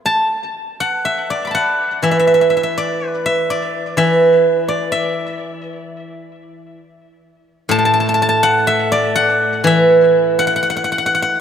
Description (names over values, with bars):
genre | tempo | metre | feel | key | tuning
chinese traditional, Chinese solo plucked strings | 60-66 BPM | 4/4 | rubato | unclear | A4 = 441 Hz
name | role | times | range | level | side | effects
steel-string zither | solo | 0.0-11.4 s | A2 to D6 | -13 LUFS | equal | tape echo
room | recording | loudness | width
wet plate reverb, RT60 3.1 s | dreamy mix soaked in reverb | -13 LUFS | side -8 dB against mid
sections
0.1-11.4 A section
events
none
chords
none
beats
| 0.07 1.07 2.05 3.02 | 3.99 4.92 5.85 6.78 | 7.72 8.67 9.65 10.64